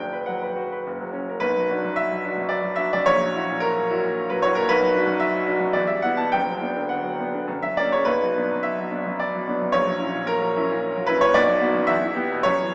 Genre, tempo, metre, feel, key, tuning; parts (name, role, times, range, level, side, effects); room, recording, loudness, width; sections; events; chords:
classical, romantic character piece for solo piano; 101-116 BPM; 3/4; rubato; B minor; A4 = 440 Hz
clear concert grand piano; solo; 0.0-12.7 s; F#1 to A5; -20 LUFS; equal
wet recital hall reverb, RT60 1.6 s; heard from further back in the room, small speaker sound; -20 LUFS; side -29 dB against mid
0.0-1.4 A section; 1.4-12.7 B section
0.0 Bm/F#; 0.9 F#; 1.4 Bm; 3.1 F#7/A#; 4.7 Bm; 5.8 Em; 6.3 Bm/F#; 7.5 F#; 8.1 Bm; 9.8 F#7/A#; 11.4 Bm; 11.9 Em